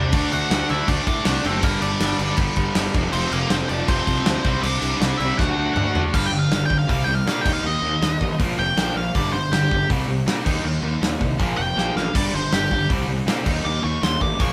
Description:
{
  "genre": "punk rock",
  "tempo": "160 BPM",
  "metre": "4/4",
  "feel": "straight",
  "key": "unclear",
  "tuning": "A4 = 440 Hz",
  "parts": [
    { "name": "nasal lead guitar with a parked wah", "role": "melody", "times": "0.0-14.5 s", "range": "Bb3 to D6", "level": "-27 LUFS", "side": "equal", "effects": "overdrive" },
    { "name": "tight distorted guitar", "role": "riff", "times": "0.0-14.5 s", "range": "F2 to Eb4", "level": "-29 LUFS", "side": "equal", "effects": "distortion" },
    { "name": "fuzz picked electric bass", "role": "bass", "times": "0.0-14.5 s", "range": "F1 to Bb2", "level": "-28 LUFS", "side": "equal", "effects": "overdrive" },
    { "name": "crunchy overdriven guitar", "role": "riff", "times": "0.1-14.5 s", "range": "F2 to Eb4", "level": "-30 LUFS", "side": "equal", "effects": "none" },
    { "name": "big rock drum kit", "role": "drums", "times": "0.1-14.5 s", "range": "crash cymbal, hi-hat, kick drum, snare drum, toms", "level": "-26 LUFS", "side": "equal", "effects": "none" }
  ],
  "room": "moderate studio reverb, RT60 0.6 s",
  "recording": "band playing live in one room",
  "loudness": "-21 LUFS",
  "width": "mono",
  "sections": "0.0-6.1 A section; 6.1-14.5 B section",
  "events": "drum fill 5.4-6.1, 11.8-12.1; lead electric guitar solo 6.1-14.5",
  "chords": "0.1 D; 1.6 Gm; 2.9 F5; 4.4 C; 5.4 D; 6.1 G5; 6.9 C5; 7.4 Eb5; 8.4 Bb5; 9.1 G5; 9.9 C5; 10.5 Eb5; 11.4 Bb5; 12.1 G5; 12.9 C5; 13.5 Eb5"
}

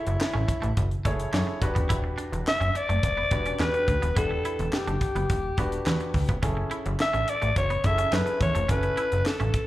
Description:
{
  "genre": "early-eighties boogie funk",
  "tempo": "106 BPM",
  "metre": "4/4",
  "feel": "straight",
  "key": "F# phrygian",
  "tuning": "A4 = 440 Hz",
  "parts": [
    { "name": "growling alto saxophone", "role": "melody", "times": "0.0-9.7 s", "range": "E4 to E5", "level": "-27 LUFS", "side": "left 1 dB", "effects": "slapback echo" },
    { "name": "warm grand piano", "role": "accompaniment", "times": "0.0-9.6 s", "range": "C#4 to G#5", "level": "-34 LUFS", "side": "equal", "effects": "slapback echo" },
    { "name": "twangy electric guitar", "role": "riff", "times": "0.0-9.6 s", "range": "A3 to E4", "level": "-37 LUFS", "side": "right 4 dB", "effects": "analog chorus, slapback echo" },
    { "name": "plucky analog bass", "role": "bass", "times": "0.1-9.5 s", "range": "D#1 to F#2", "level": "-27 LUFS", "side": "equal", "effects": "none" },
    { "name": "tight funk drum kit", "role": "drums", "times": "0.1-9.7 s", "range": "handclaps, hi-hat, kick drum, snare drum", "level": "-29 LUFS", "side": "equal", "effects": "none" }
  ],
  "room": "light reverb, small room ambience",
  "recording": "live gig heard through the venue's PA, club reverb",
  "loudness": "-23 LUFS",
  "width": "side -16 dB against mid",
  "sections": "0.0-9.7 A section",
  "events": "none",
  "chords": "0.0 F#m9; 1.6 Em9; 6.4 F#m9"
}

